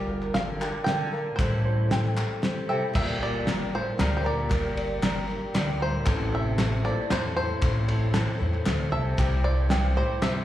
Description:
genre	indie folk with a building arrangement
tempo	116 BPM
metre	3/4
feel	straight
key	unclear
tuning	A4 = 440 Hz
part	picked twelve-string acoustic guitar	accompaniment	0.0-10.4 s	A2 to C5	-32 LUFS	left 3 dB	slapback echo
part	tenor ukulele	arpeggios	0.0-10.4 s	G4 to Bb5	-35 LUFS	right 4 dB	slapback echo
part	upright bass	bass	0.0-10.4 s	G1 to G2	-27 LUFS	equal	none
part	group handclap	percussion	0.2-10.3 s	none	-37 LUFS	left 2 dB	slapback echo
part	bluegrass banjo	melody	0.3-10.4 s	Bb4 to G5	-33 LUFS	right 1 dB	slapback echo, digital delay
part	warm cello	second line	0.3-10.4 s	G2 to D3	-34 LUFS	left 2 dB	slapback echo, digital delay
part	cloth-damped thuddy drum kit	drums	0.3-10.3 s	crash cymbal, hi-hat, kick drum, ride cymbal, snare drum	-29 LUFS	equal	none
room	light reverb, studio ambience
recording	live gig heard through the venue's PA, recital hall reverb, small room ambience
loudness	-23 LUFS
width	side -13 dB against mid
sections	0.0-3.0 A section; 3.0-10.4 B section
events	none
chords	0.0 Gm7; 1.4 Am7; 3.0 Gm; 6.1 Am; 9.2 C

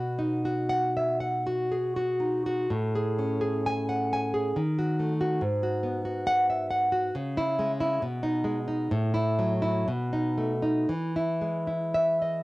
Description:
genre	romantic piece for solo classical guitar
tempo	56-71 BPM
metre	3/4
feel	rubato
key	unclear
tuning	A4 = 440 Hz
part	nylon-string guitar	solo	0.0-12.4 s	G#2 to G#5	-25 LUFS	equal	cassette tape
room	moderate spring reverb, RT60 1.1 s, small room ambience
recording	home recording on cassette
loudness	-25 LUFS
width	side -20 dB against mid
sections	0.0-12.4 A section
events	none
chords	0.0 B; 2.7 Amaj7; 4.6 D#dim; 5.4 G#m7; 7.1 C#m; 8.0 G#m/B; 8.9 F#m7/A; 9.9 B7; 10.9 E

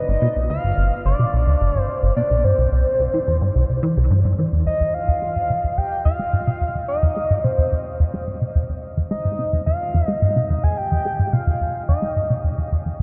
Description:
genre	ambient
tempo	108 BPM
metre	4/4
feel	straight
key	F minor from 4.7 s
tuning	A4 = 440 Hz
part	pulse-width lead	melody	0.0-12.7 s	C5 to Ab5	-26 LUFS	equal	chorus, tape echo
part	plucky analog bass	riff	0.1-13.0 s	G1 to Ab3	-22 LUFS	equal	ensemble chorus, tape echo
room	wet huge ambient reverb, RT60 7.4 s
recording	dark, warm production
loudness	-20 LUFS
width	mono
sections	0.0-4.7 A section; 4.7-13.0 B section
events	filter sweep on analog synth bass 4.7-13.0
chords	0.0 G7; 2.4 C; 4.7 Fm7

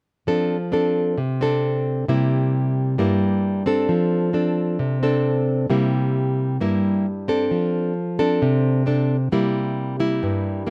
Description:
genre	bossa nova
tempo	133 BPM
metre	4/4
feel	straight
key	F major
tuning	A4 = 440 Hz
part	nylon-string guitar	accompaniment	0.3-10.7 s	G2 to A4	-21 LUFS	equal	none
room	light reverb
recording	recorded outdoors, with no room sound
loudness	-21 LUFS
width	mono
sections	0.3-10.7 A section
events	none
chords	0.3 F6; 2.1 C7; 3.9 F6; 5.7 C7; 7.5 F6; 9.3 C7

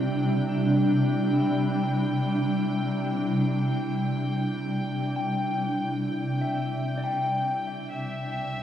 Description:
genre	ambient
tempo	free time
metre	none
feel	none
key	C major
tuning	A4 = 440 Hz
part	granular cloud pad	sustained chords	0.0-8.6 s	C2 to E4	-25 LUFS	equal	built-in reverb, shimmer reverb
part	electric guitar at the edge of break-up	arpeggios	0.0-8.6 s	G3 to G5	-34 LUFS	left 2 dB	spring reverb, diffuse ambient delay, shimmer reverb
part	dark chamber violin section	texture	0.0-8.6 s	E5 to G5	-35 LUFS	left 1 dB	shimmer reverb
room	wet lush hall reverb, RT60 3.0 s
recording	none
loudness	-24 LUFS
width	side -10 dB against mid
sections	0.0-8.6 A section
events	fade-in on clean electric guitar 0.0-8.6; fade-in on violin section 0.0-8.6; filter sweep on ambient pad 0.0-8.6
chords	0.0 C; 7.9 Am/C

